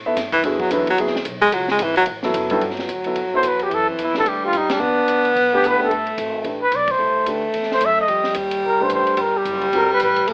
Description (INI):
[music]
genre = jazz, small-group swing and bop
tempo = 220 BPM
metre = 4/4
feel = swing 59% on 8ths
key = G major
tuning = A4 = 440 Hz
[part]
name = upright bass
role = bass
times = 0.0-10.3 s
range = F#1 to A2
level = -38 LUFS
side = equal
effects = none
[part]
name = warm grand piano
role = accompaniment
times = 0.1-9.9 s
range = G2 to E5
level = -25 LUFS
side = equal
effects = none
[part]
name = compact cocktail drum kit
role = drums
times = 0.2-10.3 s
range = hi-hat, kick drum, ride cymbal, snare drum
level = -33 LUFS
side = equal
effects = none
[part]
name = clear baritone saxophone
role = second line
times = 0.3-10.3 s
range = D3 to B3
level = -22 LUFS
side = equal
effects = none
[part]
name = breathy trumpet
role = melody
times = 3.4-10.3 s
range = C4 to E5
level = -21 LUFS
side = equal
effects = none
[sound]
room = light reverb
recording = AM radio sound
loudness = -19 LUFS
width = mono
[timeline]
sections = 0.0-2.6 A section; 2.6-10.3 B section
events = baritone saxophone solo 0.0-2.6; band accent 4.7, 6.9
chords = 0.4 D; 1.5 C#5; 2.1 Gmaj13; 2.6 Gmaj7; 3.7 F#m7b5; 4.3 B7alt; 4.8 Em7; 5.9 Gadd9; 7.0 C69; 8.1 F9; 9.2 Gmaj7